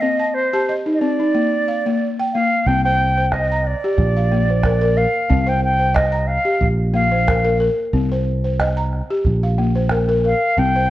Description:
west african traditional, West African string and xylophone music; 91 BPM; 4/4; swing 53% on 16ths; C dorian; A4 = 438 Hz
silver concert flute; melody; 0.0-10.9 s; C5 to G5; -19 LUFS; right 1 dB
balafon; arpeggios; 0.0-10.9 s; Bb3 to Bb5; -20 LUFS; left 2 dB
fingered electric bass; bass; 2.7-10.9 s; Bb1 to C2; -19 LUFS; equal
calabash; percussion; 2.7-10.7 s; -22 LUFS; right 2 dB
moderate recital hall reverb, RT60 1.7 s; worn, warbling old tape, cassette tape, warbly pitch drift; -15 LUFS; side -14 dB against mid
0.0-2.7 A section; 2.7-10.9 B section
0.0 Cm; 1.3 Bb; 2.7 Cm; 4.0 Bb; 5.3 Cm; 6.6 Bb5; 7.9 Cm; 9.3 Bb5

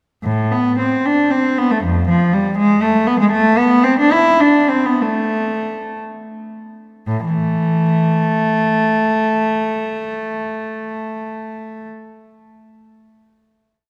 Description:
classical, baroque-style suite movement for unaccompanied cello; 54-82 BPM (dotted quarters); 6/8; rubato; A minor; A4 = 439 Hz
rich cello; solo; 0.2-11.9 s; F2 to E4; -17 LUFS; equal
wet church reverb, RT60 3.2 s; -16 LUFS; mono
0.2-7.1 A section; 7.1-11.1 final chord
slowing down 2.6-7.1

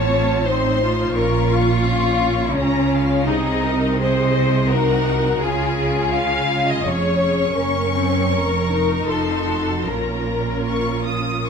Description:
classical, slow romantic movement for string orchestra; 74-87 BPM; 3/4; rubato; Bb minor; A4 = 440 Hz
clear symphonic violin section; melody; 0.0-11.5 s; Eb5 to Eb6; -27 LUFS; left 2 dB
warm studio violin section; second line; 0.0-11.4 s; Db4 to F5; -21 LUFS; left 4 dB
rich symphonic viola section; accompaniment; 0.0-11.5 s; Bb3 to Bb4; -24 LUFS; equal
rich symphonic cello section; bass; 0.0-11.5 s; F2 to Db3; -24 LUFS; right 2 dB
rich symphonic double bass section; bass; 0.0-11.5 s; F1 to Db2; -25 LUFS; right 5 dB
moderate scoring stage reverb, RT60 2.0 s; -17 LUFS; side -6 dB against mid
0.0-11.5 A section
0.0 F7/A; 1.2 Bbm; 3.3 Ab/C; 5.4 Db; 7.6 Gb; 8.3 Bbm/F; 9.1 F7; 9.9 Bbm

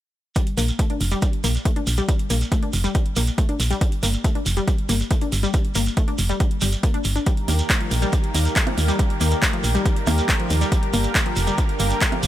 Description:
uplifting trance; 139 BPM; 4/4; straight; A4 = 440 Hz
wide unison pluck; arpeggios; 0.4-12.1 s; F3 to D4; -27 LUFS; left 3 dB; sidechain pumping, digital delay
electronic kick drum; drums; 0.4-12.1 s; -21 LUFS; equal
techno drum kit; drums; 0.4-12.3 s; handclaps, hi-hat, percussion blips; -26 LUFS; right 1 dB
shekere; percussion; 0.4-12.3 s; -30 LUFS; right 3 dB
solid FM bass; bass; 0.6-12.3 s; F1 to Eb2; -21 LUFS; equal; sidechain pumping
lush unison pad; sustained chords; 7.3-12.3 s; D3 to Bb4; -27 LUFS; right 1 dB; chorus, sidechain pumping
little or no reverb; -18 LUFS; side -13 dB against mid
0.4-12.3 A section
0.4 Bb; 7.3 Eb; 10.7 Gm

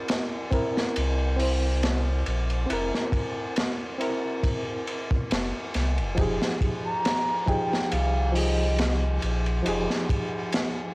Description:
trip hop; 69 BPM; 4/4; swing 54% on 16ths; F minor; A4 = 441 Hz
barky reed electric piano; accompaniment; 0.0-10.9 s; F3 to C5; -30 LUFS; equal; overdrive, fast tremolo, harmonic tremolo, low-pass filter, cassette tape, tape echo
crunchy breakbeat drum kit; drums; 0.1-10.8 s; hi-hat, kick drum, ride cymbal, snare drum; -27 LUFS; equal; cassette tape
warm sub bass; bass; 1.0-9.9 s; F1 to C2; -25 LUFS; equal
mellow baroque flute; melody; 6.9-9.2 s; Eb5 to Bb5; -29 LUFS; right 1 dB; cassette tape, tape echo
small room ambience; home recording on cassette, vinyl crackle; -23 LUFS; side -24 dB against mid
0.0-10.9 A section
0.0 C7; 6.2 Fm9

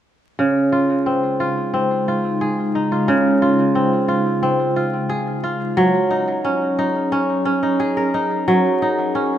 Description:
folktronica; 89 BPM; 4/4; straight; Db major; A4 = 439 Hz
warbly tape-like pad; sustained chords; 1.2-9.4 s; Db3 to Bb4; -23 LUFS; equal; chorus, built-in reverb, tremolo
kora; arpeggios; 0.4-9.4 s; Db3 to Bb4; -17 LUFS; equal; low-pass filter, digital delay
wet plate reverb, RT60 3.3 s; rough home demo mix, vinyl crackle; -16 LUFS; side -10 dB against mid
0.4-9.4 A section
0.4 Dbmaj7; 5.8 Gb6

